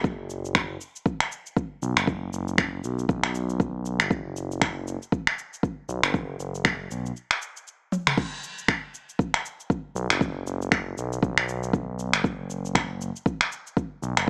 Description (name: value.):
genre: afro house.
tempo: 118 BPM.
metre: 4/4.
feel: swing 58% on 16ths.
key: unclear.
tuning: A4 = 440 Hz.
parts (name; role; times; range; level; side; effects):
smooth gliding synth bass; bass; 0.0-14.3 s; F#1 to B1; -30 LUFS; equal; sidechain pumping.
afro-pop drum kit; drums; 0.0-14.3 s; crash cymbal, finger snaps, shaker, toms; -24 LUFS; equal; studio ambience.
electronic kick drum; drums; 0.0-13.9 s; none; -25 LUFS; equal; studio ambience.
room: little or no reverb.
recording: dry, gritty hardware recording, transformer saturation, small speaker sound.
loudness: -24 LUFS.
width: side -31 dB against mid.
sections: 0.0-8.2 A section; 8.2-14.3 B section.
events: drum fill 7.9; band accent 8.1; drop 8.2-14.3.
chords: none.